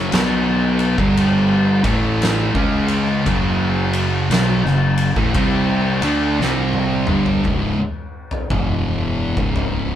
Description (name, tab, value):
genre	stoner and doom metal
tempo	57 BPM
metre	4/4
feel	swing 64% on 8ths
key	unclear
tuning	A4 = 439 Hz
part	distorted electric guitar	riff	0.0-7.5 s	F#2 to D4	-24 LUFS	right 2 dB	overdrive
part	thick fuzz guitar	riff	0.0-10.0 s	C#2 to D4	-20 LUFS	left 3 dB	distortion
part	thick fuzz guitar	riff	0.0-10.0 s	C#2 to D4	-23 LUFS	right 6 dB	distortion
part	fuzz fingered electric bass	bass	0.0-10.0 s	C#1 to D2	-24 LUFS	right 1 dB	overdrive, tube saturation
part	oversized low-tuned drum kit	drums	0.1-9.9 s	kick drum, ride cymbal, snare drum, toms	-22 LUFS	left 1 dB	none
room	moderate studio reverb, RT60 0.8 s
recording	band playing live in one room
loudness	-15 LUFS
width	side -10 dB against mid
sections	0.0-7.5 A section; 7.5-10.0 B section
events	drum fill 6.4-7.5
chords	0.0 F#5; 7.5 C#m